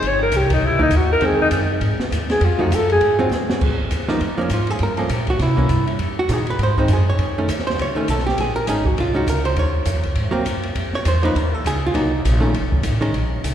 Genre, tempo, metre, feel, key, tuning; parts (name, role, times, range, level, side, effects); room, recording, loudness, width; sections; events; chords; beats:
jazz, small-group swing and bop; 201 BPM; 4/4; swing 60% on 8ths; Db major from 3.6 s; A4 = 440 Hz
breathy alto saxophone; melody; 0.0-3.2 s; Eb4 to Db5; -19 LUFS; left 1 dB
upright bass; bass; 0.0-13.5 s; F1 to C3; -21 LUFS; equal
open jazz drum kit; drums; 0.0-13.5 s; crash cymbal, hi-hat, kick drum, ride cymbal, snare drum; -25 LUFS; equal
hollow-body jazz guitar; accompaniment; 0.8-13.1 s; Eb3 to Db5; -22 LUFS; right 2 dB
wet church reverb, RT60 2.7 s; recorded in a church or concert hall; -17 LUFS; side -10 dB against mid
0.0-3.6 A section; 3.6-13.1 A section
alto saxophone solo 0.0-3.6; drum fill 3.3
0.0 Gmadd11; 0.6 Dbm69; 1.2 Fm7; 2.4 F7b9; 3.0 Ab6; 3.6 Db69; 4.8 Gm7b5; 5.4 C7b9; 6.0 Fm7; 7.2 Faug7; 8.4 Bbm11; 9.6 Ebsus2; 10.2 Ab9; 10.8 Db69; 12.0 Cm7b5; 12.5 F7alt
| 0.02 0.32 0.62 0.92 | 1.22 1.51 1.81 2.11 | 2.41 2.71 3.00 3.30 | 3.60 3.90 4.20 4.50 | 4.79 5.09 5.39 5.69 | 5.99 6.29 6.58 6.88 | 7.18 7.48 7.78 8.07 | 8.37 8.67 8.97 9.27 | 9.57 9.86 10.16 10.46 | 10.76 11.06 11.36 11.65 | 11.95 12.25 12.55 12.85 | 13.15 13.45